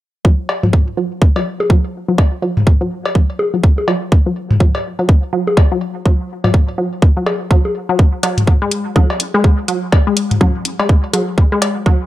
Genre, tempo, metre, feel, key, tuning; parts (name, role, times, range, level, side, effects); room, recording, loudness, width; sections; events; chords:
minimal techno; 124 BPM; 4/4; swing 60% on 16ths; F# minor; A4 = 435 Hz
resonant blip pluck; riff; 0.2-11.9 s; F#3 to G#3; -19 LUFS; equal; chorus, sidechain pumping, dub echo
electronic kick drum; drums; 0.2-12.0 s; -11 LUFS; equal
electronic cowbell, toms and bongos; percussion; 0.5-11.7 s; -18 LUFS; left 1 dB
electronic hi-hat; drums; 8.2-11.7 s; -19 LUFS; left 2 dB
filtered dub chord stab; stabs; 9.0-10.5 s; F#3 to A4; -20 LUFS; left 1 dB; phaser, wide subtle chorus, digital delay
little or no reverb; -12 LUFS; side -15 dB against mid
0.2-12.1 A section
filter sweep on synth pluck 0.2-12.1
0.2 F#m7